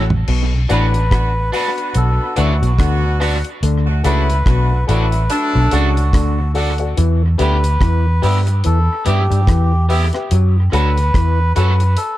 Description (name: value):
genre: roots reggae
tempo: 72 BPM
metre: 4/4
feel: swing 59% on 16ths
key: B minor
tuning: A4 = 439 Hz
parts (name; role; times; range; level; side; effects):
- electric guitar at the edge of break-up; accompaniment; 0.0-11.8 s; A3 to B4; -26 LUFS; right 3 dB; lush chorus, dub echo
- overdriven clav; riff; 0.0-11.8 s; A2 to G3; -25 LUFS; left 6 dB; none
- dark upright piano; stabs; 0.0-11.8 s; F#4 to G5; -25 LUFS; left 4 dB; none
- vintage muted fingered electric bass; bass; 0.0-11.9 s; A1 to G2; -15 LUFS; equal; none
- deep reggae drum kit; drums; 0.1-12.2 s; crash cymbal, hi-hat, kick drum, rim click, toms; -21 LUFS; equal; analog delay
- melodica; melody; 0.7-12.2 s; F#4 to B4; -22 LUFS; equal; dub echo
- clear horn section; second line; 0.7-6.1 s; F#3 to F#4; -24 LUFS; right 1 dB; dub echo
room: little or no reverb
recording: echo-heavy mix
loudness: -13 LUFS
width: side -15 dB against mid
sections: 0.3-12.2 A section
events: drum fill 0.0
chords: 0.3 Bm; 7.0 Em; 10.3 F#m